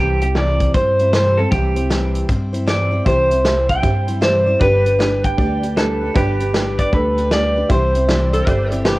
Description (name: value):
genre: honky-tonk and classic country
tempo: 155 BPM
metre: 4/4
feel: swing 64% on 8ths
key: C major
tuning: A4 = 440 Hz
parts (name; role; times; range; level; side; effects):
- electric guitar through a small old amp; melody; 0.0-8.8 s; G4 to G5; -18 LUFS; right 1 dB; cassette tape
- picked steel-string acoustic guitar; accompaniment; 0.0-9.0 s; C3 to C5; -24 LUFS; left 2 dB; cassette tape
- upright bass; bass; 0.0-9.0 s; G1 to G2; -19 LUFS; equal; none
- natural country drum kit; drums; 0.2-9.0 s; hi-hat, kick drum, snare drum; -20 LUFS; equal; cassette tape
- honky-tonk upright piano; accompaniment; 3.0-9.0 s; D4 to D5; -24 LUFS; right 2 dB; cassette tape
- lap resonator guitar; second line; 8.3-9.0 s; G4 to C5; -23 LUFS; right 1 dB; cassette tape
room: light reverb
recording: home recording on cassette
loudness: -14 LUFS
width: side -19 dB against mid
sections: 0.0-9.0 A section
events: none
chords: 0.0 C; 4.6 G; 7.7 C